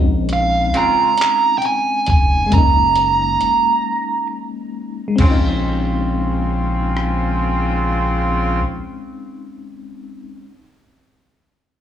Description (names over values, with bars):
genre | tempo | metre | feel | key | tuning
slow six-eight R&B | 45 BPM (dotted quarters) | 6/8 | straight | Bb minor | A4 = 440 Hz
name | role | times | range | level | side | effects
FM electric piano with auto-pan | accompaniment | 0.0-10.4 s | Ab3 to Eb4 | -24 LUFS | left 4 dB | slapback echo
round analog bass | bass | 0.0-8.6 s | F1 to Bb1 | -19 LUFS | equal | none
fuzz lead guitar | melody | 0.3-4.3 s | F5 to Bb5 | -15 LUFS | right 4 dB | distortion, slapback echo, tape echo
dusty soul sampler-style drum kit | drums | 0.3-7.2 s | crash cymbal, handclaps, hi-hat, kick drum, rim click | -18 LUFS | equal | none
warm horn section | stabs | 0.7-1.1, 5.2-8.6 s | Db3 to F4 | -22 LUFS | equal | slapback echo
room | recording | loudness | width
light reverb | live gig heard through the venue's PA, club reverb, small room ambience | -15 LUFS | side -10 dB against mid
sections
0.0-5.2 A section; 5.2-7.9 B section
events
break 3.9-5.2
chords
0.0 Bbm11; 2.5 Gb69; 5.2 Bbm11